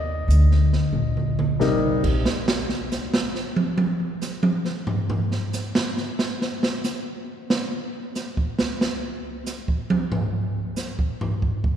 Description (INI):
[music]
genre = jazz piano trio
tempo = 92 BPM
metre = 4/4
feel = swing 67% on 8ths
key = unclear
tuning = A4 = 440 Hz
[part]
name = clear concert grand piano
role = melody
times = 0.0-2.0 s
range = C3 to Eb5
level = -26 LUFS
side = left 2 dB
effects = none
[part]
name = upright bass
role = bass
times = 0.0-2.2 s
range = Bb1 to Eb2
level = -20 LUFS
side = equal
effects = none
[part]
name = open jazz drum kit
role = drums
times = 0.3-11.8 s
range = crash cymbal, hi-hat, kick drum, snare drum, toms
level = -23 LUFS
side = right 2 dB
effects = none
[sound]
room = wet church reverb, RT60 3.0 s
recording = recorded in a church or concert hall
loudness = -21 LUFS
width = side -9 dB against mid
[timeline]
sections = 0.0-2.3 A section; 2.3-11.8 B section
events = drum fill 0.9-1.6; drum solo 2.3-11.8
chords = 0.0 Eb5; 2.3 N.C.